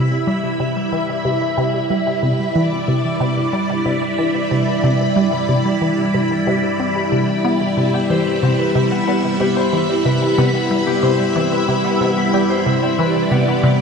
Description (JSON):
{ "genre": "ambient, sequencer-driven space music", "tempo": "92 BPM", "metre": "4/4", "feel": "straight", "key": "C major", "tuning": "A4 = 439 Hz", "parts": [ { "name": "string machine, full ensemble", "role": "sustained chords", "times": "0.0-13.8 s", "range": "G3 to B5", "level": "-18 LUFS", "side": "equal", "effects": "phaser, ensemble chorus, shimmer reverb" }, { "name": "resonant blip pluck", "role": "riff", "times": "0.0-13.8 s", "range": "C3 to C4", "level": "-19 LUFS", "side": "right 1 dB", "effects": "phaser, tape echo, shimmer reverb" }, { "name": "concert harp", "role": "arpeggios", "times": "7.9-13.8 s", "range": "B3 to C5", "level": "-21 LUFS", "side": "left 6 dB", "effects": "auto-pan, tape echo, shimmer reverb" } ], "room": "wet plate reverb, RT60 2.4 s", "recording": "none", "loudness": "-15 LUFS", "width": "side -5 dB against mid", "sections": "0.0-13.8 A section", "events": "none", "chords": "0.0 Cmaj7" }